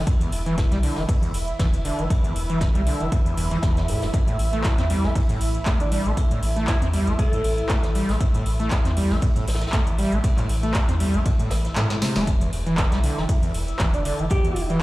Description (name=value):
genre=acid house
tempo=118 BPM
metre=4/4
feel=swing 54% on 16ths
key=unclear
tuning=A4 = 439 Hz
part: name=lush unison pad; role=sustained chords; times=0.0-14.8 s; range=E4 to E5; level=-32 LUFS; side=right 1 dB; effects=chorus, phaser, sidechain pumping
part: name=warm sub bass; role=bass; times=0.0-14.8 s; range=E1 to A2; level=-25 LUFS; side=equal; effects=sidechain pumping
part: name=overdriven acid bass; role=riff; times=0.1-14.8 s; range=E2 to C4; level=-26 LUFS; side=equal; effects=distortion, wide subtle chorus, tape echo
part: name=booming analog drum machine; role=drums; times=0.1-14.8 s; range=handclaps, hi-hat, snare drum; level=-31 LUFS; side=equal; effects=overdrive
part: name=electronic kick drum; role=drums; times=0.1-14.4 s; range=none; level=-22 LUFS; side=equal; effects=none
part: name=vintage brush drum kit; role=drums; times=0.1-14.7 s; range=hi-hat, ride cymbal, snare drum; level=-37 LUFS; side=left 1 dB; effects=sidechain pumping on cymbals, high-pass filter on cymbals, sidechain pumping on hats, high-pass filter on hats, high-pass filter on snare, high-pass filter on room
part: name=breathy alto saxophone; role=melody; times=5.8-7.7, 13.9-14.7 s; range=D4 to A4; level=-29 LUFS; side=right 1 dB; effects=tape echo
room=light reverb, studio ambience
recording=played on a big sound system in a bare room, large studio reverb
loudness=-20 LUFS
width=side -18 dB against mid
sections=0.0-14.8 A section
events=kick drops out 11.8-12.3; drum fill 11.8-12.3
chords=0.0 N.C.; 4.1 A7(no3); 12.3 E7(no3)